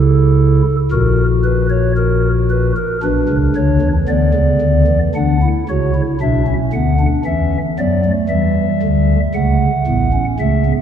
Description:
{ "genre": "classical, baroque-style 3-part fugue for pipe organ", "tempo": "57 BPM", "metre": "4/4", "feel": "straight", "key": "unclear", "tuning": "A4 = 439 Hz", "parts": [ { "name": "pipe organ, stopped flute", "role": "solo", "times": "0.0-10.8 s", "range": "A1 to F#5", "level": "-12 LUFS", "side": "equal", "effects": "none" } ], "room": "wet church reverb, RT60 2.9 s", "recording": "dark, warm production", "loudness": "-13 LUFS", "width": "side -8 dB against mid", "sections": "0.0-5.1 A section; 5.1-10.8 B section", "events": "none", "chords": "0.0 A/C#; 0.9 F#/A#; 3.0 Bm; 7.2 Em; 9.3 A" }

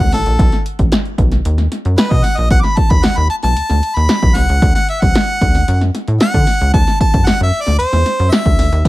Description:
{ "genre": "funk", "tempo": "114 BPM", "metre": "4/4", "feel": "straight", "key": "unclear", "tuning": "A4 = 440 Hz", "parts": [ { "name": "clear harmonica", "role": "melody", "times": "0.0-8.8 s", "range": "A4 to D6", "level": "-18 LUFS", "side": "equal", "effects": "none" }, { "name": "rubbery square bass", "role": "bass", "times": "0.0-8.9 s", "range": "A1 to D3", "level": "-14 LUFS", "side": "equal", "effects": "none" }, { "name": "punchy analog drum machine", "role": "drums", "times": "0.0-8.9 s", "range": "crash cymbal, hi-hat, kick drum, snare drum", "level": "-14 LUFS", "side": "equal", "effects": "none" } ], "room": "little or no reverb", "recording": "none", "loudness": "-11 LUFS", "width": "side -18 dB against mid", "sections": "0.0-8.9 A section", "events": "harmonica solo 0.0-8.9", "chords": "0.4 B7; 4.6 Dadd9" }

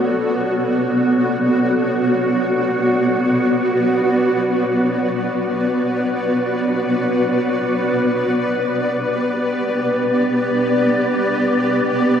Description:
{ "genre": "ambient", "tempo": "free time", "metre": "none", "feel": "none", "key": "B minor", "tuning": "A4 = 440 Hz", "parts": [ { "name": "granular cloud pad", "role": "sustained chords", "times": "0.0-12.2 s", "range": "B3 to D5", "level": "-16 LUFS", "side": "equal", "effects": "built-in reverb" }, { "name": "wind-like tuned noise texture", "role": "texture", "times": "0.0-12.2 s", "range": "D5 to F#5", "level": "-27 LUFS", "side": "equal", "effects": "built-in reverb" } ], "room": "wet huge ambient reverb, RT60 7.9 s", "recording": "none", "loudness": "-16 LUFS", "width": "side -8 dB against mid", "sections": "0.0-12.2 A section", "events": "fade-in on synth texture 0.0-12.2", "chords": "0.0 Bm9; 7.8 G/B" }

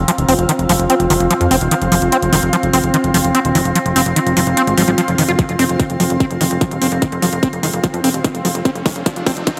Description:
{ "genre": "psychedelic trance", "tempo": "147 BPM", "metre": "4/4", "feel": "straight", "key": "unclear", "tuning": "A4 = 444 Hz", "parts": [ { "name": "overtone-sweeping drone", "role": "sustained chords", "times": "0.0-9.6 s", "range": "C4", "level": "-25 LUFS", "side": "equal", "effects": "chorus, built-in reverb, phaser, sidechain pumping" }, { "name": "plucky analog bass", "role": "bass", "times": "0.0-9.6 s", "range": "Eb1 to F2", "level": "-21 LUFS", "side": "equal", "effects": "none" }, { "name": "granular cloud pad", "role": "texture", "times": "0.0-9.6 s", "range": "C4 to C6", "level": "-24 LUFS", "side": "equal", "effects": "built-in reverb, sidechain pumping" }, { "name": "screaming distorted acid line", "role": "riff", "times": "0.1-9.5 s", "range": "Eb3 to F4", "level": "-20 LUFS", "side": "equal", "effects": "distortion, chorus, sidechain pumping, delay" }, { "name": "electronic hi-hat", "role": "drums", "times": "0.1-9.6 s", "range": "none", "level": "-24 LUFS", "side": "equal", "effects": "studio reverb" }, { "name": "electronic kick drum", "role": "drums", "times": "5.4-9.6 s", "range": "none", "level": "-19 LUFS", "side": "equal", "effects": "studio reverb" }, { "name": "riser", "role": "sound effects", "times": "7.6-9.6 s", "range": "none", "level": "-34 LUFS", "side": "equal", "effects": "none" } ], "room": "moderate lush hall reverb, RT60 2.1 s", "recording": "high-pass filter", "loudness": "-15 LUFS", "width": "mono", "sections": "0.0-9.6 A section", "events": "build-up 0.0-9.6; drum fill 5.4-9.6", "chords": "0.0 F5" }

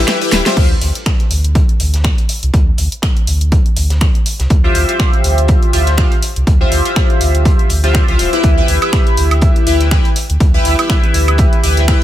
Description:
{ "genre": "deep house", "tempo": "122 BPM", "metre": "4/4", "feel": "swing 56% on 16ths", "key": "D dorian", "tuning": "A4 = 443 Hz", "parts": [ { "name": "soft string machine", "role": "sustained chords", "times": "0.0-0.5 s", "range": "G3 to G4", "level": "-33 LUFS", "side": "right 1 dB", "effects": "none" }, { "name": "chorused polysynth", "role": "stabs", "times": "0.0-0.7, 4.6-12.0 s", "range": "E4 to G5", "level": "-16 LUFS", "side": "left 1 dB", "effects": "phaser, sidechain pumping, ping-pong delay" }, { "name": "sub bass with octave", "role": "bass", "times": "0.0-12.0 s", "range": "D1 to D2", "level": "-14 LUFS", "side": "equal", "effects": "sidechain pumping" }, { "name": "clear studio violin section", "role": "texture", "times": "0.0-0.6 s", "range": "G5", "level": "-36 LUFS", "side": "left 3 dB", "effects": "none" }, { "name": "crunchy breakbeat drum kit", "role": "drums", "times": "0.1-12.0 s", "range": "hi-hat, snare drum", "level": "-31 LUFS", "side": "equal", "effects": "none" }, { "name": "deep house drum kit", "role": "drums", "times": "0.1-12.0 s", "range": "cabasa, crash cymbal, finger snaps, hi-hat, snare drum, woodblock", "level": "-20 LUFS", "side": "right 1 dB", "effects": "none" }, { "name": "electronic kick drum", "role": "drums", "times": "0.6-12.0 s", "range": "none", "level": "-13 LUFS", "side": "equal", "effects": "overdrive" } ], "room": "digital ambience", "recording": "none", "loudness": "-10 LUFS", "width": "side -13 dB against mid", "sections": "0.6-12.0 A section", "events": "break 0.0-0.6; drum fill 0.0-0.6", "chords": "0.0 Em" }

